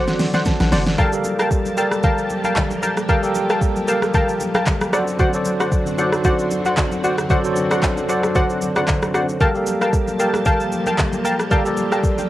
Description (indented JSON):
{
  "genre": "amapiano",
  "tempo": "114 BPM",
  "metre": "4/4",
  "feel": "swing 55% on 16ths",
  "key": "G minor",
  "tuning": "A4 = 440 Hz",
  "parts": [
    { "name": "tine electric piano", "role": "accompaniment", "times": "0.0-12.3 s", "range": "F#3 to A5", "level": "-22 LUFS", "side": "right 1 dB", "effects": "medium stereo tremolo, cassette tape" },
    { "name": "string machine, full ensemble", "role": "sustained chords", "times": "0.0-12.3 s", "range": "F#2 to A5", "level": "-28 LUFS", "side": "equal", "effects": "ensemble chorus, sidechain pumping, cassette tape" },
    { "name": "punchy chord stab", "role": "stabs", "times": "0.0-12.0 s", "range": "F#4 to A5", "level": "-22 LUFS", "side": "left 1 dB", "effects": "chorus, cassette tape, tape echo" },
    { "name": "hollow log drum bass", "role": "bass", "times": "0.0-1.0 s", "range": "F#1 to A1", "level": "-21 LUFS", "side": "equal", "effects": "none" },
    { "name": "smooth R&B drum kit", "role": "drums", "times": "0.1-12.3 s", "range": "handclaps, hi-hat, kick drum, rim click, shaker, snare drum", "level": "-20 LUFS", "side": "equal", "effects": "overdrive, cassette tape" },
    { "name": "congas", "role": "percussion", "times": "0.2-12.3 s", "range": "none", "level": "-29 LUFS", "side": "left 1 dB", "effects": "none" }
  ],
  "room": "light reverb, digital ambience",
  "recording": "home recording on cassette",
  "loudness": "-16 LUFS",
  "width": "side -14 dB against mid",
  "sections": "1.0-12.3 A section",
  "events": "drum fill 0.0-1.0",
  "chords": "0.0 D7; 1.0 Gm9; 4.9 D7/F#; 9.4 Gm9",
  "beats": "0.46 | 0.98 1.51 2.04 2.56 | 3.09 3.62 4.14 4.67 | 5.20 5.72 6.25 6.78 | 7.30 7.83 8.35 8.88 | 9.41 9.93 10.46 10.98 | 11.51 12.04"
}